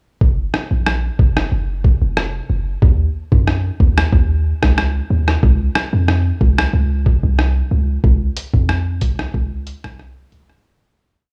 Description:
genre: dancehall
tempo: 92 BPM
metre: 4/4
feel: straight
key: unclear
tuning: A4 = 440 Hz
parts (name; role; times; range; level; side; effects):
- warm 808-style bass; bass; 0.2-10.6 s; F1 to Gb2; -19 LUFS; equal; none
- lo-fi sampler-style drum kit; drums; 0.2-10.6 s; hi-hat, kick drum, rim click; -17 LUFS; equal; none
room: little or no reverb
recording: studio reverb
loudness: -16 LUFS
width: mono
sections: 0.2-10.6 verse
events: fade-out 8.0-10.6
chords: none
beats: | 0.21 0.86 1.52 2.17 | 2.82 3.47 4.12 4.78 | 5.43 6.08 6.73 7.39 | 8.04 8.69 9.34 9.99

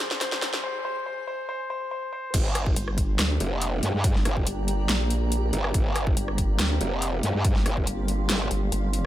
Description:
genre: heavy wobble dubstep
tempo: 141 BPM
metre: 4/4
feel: half-time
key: G phrygian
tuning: A4 = 440 Hz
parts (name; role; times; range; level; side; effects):
- warm grand piano; melody; 0.0-2.3 s; C5; -32 LUFS; left 2 dB; ping-pong delay
- supersaw pad; sustained chords; 0.0-9.1 s; Ab2 to D5; -37 LUFS; right 2 dB; sidechain pumping, low-pass filter
- dubstep drum kit; drums; 0.0-9.0 s; crash cymbal, hi-hat, rim click, snare drum; -28 LUFS; equal; none
- riser; sound effects; 0.0-0.6 s; none; -38 LUFS; right 1 dB; none
- granular cloud pad; texture; 0.0-9.1 s; Eb4 to C6; -37 LUFS; equal; built-in reverb, sidechain pumping
- growl bass; bass; 2.3-8.5 s; F1 to G2; -26 LUFS; equal; chorus, overdrive
- electronic kick drum; drums; 2.3-7.9 s; none; -25 LUFS; equal; none
- vowel-sweep wobble bass; bass; 2.8-9.1 s; G1 to D2; -25 LUFS; equal; chorus, overdrive
room: digital ambience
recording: high-pass filter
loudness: -23 LUFS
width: side -13 dB against mid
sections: 0.0-2.3 A section; 2.3-9.1 B section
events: build-up 0.0-2.3; drum fill 0.0-0.6; riser 0.0-0.6; filter sweep 0.0-2.3; break 0.6-2.3; drop 2.3-9.1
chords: 0.0 Ab; 2.3 Gm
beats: 0.21 | 0.64 1.06 1.49 1.91 | 2.34 2.76 3.19 3.62 | 4.04 4.47 4.89 5.32 | 5.74 6.17 6.59 7.02 | 7.45 7.87 8.30 8.72

